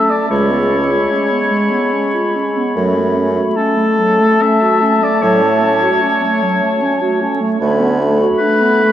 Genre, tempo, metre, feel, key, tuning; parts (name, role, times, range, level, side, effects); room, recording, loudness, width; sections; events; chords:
classical, slow romantic movement for wind quintet; 74 BPM; 3/4; rubato; F# minor; A4 = 440 Hz
mellow silver concert flute; melody; 0.0-8.9 s; A5 to B5; -21 LUFS; left 2 dB
clear oboe; second line; 0.0-8.9 s; A4 to E5; -18 LUFS; left 2 dB
dark clarinet; accompaniment; 0.0-8.9 s; F#3 to F#4; -18 LUFS; right 3 dB
mellow French horn; accompaniment; 0.0-8.9 s; G#3 to A3; -17 LUFS; left 1 dB
clear bassoon; bass; 0.3-8.3 s; C#2 to A2; -16 LUFS; right 2 dB
wet cathedral reverb, RT60 7.2 s; in a vast, echoing space, vinyl crackle; -12 LUFS; side -11 dB against mid
0.0-8.9 A section
0.3 C#7; 2.8 F#m; 5.2 F#m/A; 7.6 Bm7/D